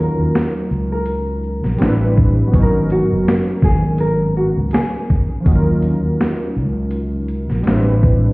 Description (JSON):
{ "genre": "lo-fi hip hop", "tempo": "82 BPM", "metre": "4/4", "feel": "swing 56% on 16ths", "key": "G# dorian", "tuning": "A4 = 442 Hz", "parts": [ { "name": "nylon-string guitar", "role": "melody", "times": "0.0-7.6 s", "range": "F#4 to A#4", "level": "-22 LUFS", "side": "equal", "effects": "low-pass filter" }, { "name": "warbly lo-fi synth keys", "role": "accompaniment", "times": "0.0-8.3 s", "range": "E#3 to B4", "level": "-20 LUFS", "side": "equal", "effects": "chorus, cassette tape, low-pass filter" }, { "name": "fretless electric bass", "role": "bass", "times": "0.0-8.3 s", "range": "F#1 to D#2", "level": "-17 LUFS", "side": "equal", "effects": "none" }, { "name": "boom bap sampler-style drum kit", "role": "drums", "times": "0.4-8.2 s", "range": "hi-hat, kick drum, shaker, snare drum", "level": "-16 LUFS", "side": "equal", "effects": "none" } ], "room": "light reverb", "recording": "heard muffled through a wall, stone room reverb, vinyl crackle, EQ", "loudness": "-14 LUFS", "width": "side -23 dB against mid", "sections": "0.0-8.3 A section", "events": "none", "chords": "0.0 D#m7; 1.8 Am11; 2.5 G#m11; 5.5 D#m7; 7.7 Am11", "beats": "0.34 1.07 1.80 | 2.53 3.27 4.00 4.73 | 5.46 6.19 6.92 7.66" }